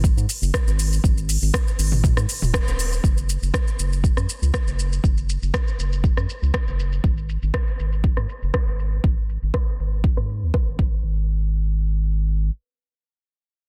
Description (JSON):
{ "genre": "afro house", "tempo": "120 BPM", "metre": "4/4", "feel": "straight", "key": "unclear", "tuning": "A4 = 442 Hz", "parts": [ { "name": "round analog bass", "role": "bass", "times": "0.0-12.5 s", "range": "D#1 to G#2", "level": "-24 LUFS", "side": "equal", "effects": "sidechain pumping" }, { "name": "deep house drum kit", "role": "drums", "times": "0.0-10.8 s", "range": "hi-hat, rim click, shaker, toms", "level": "-30 LUFS", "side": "equal", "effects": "low-pass filter on perc, low-pass filter on hats, soft clipping on snare, low-pass filter on snare, low-pass filter on toms" }, { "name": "electronic kick drum", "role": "drums", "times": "0.0-10.9 s", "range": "none", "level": "-23 LUFS", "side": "equal", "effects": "none" } ], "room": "digital ambience", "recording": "dense, heavily limited modern master", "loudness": "-22 LUFS", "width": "mono", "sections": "0.0-3.0 A section; 3.0-11.0 B section; 11.0-13.7 C section", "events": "drop 0.0-3.0; band accent 2.5; filter sweep on drum 3.0-11.0", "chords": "none" }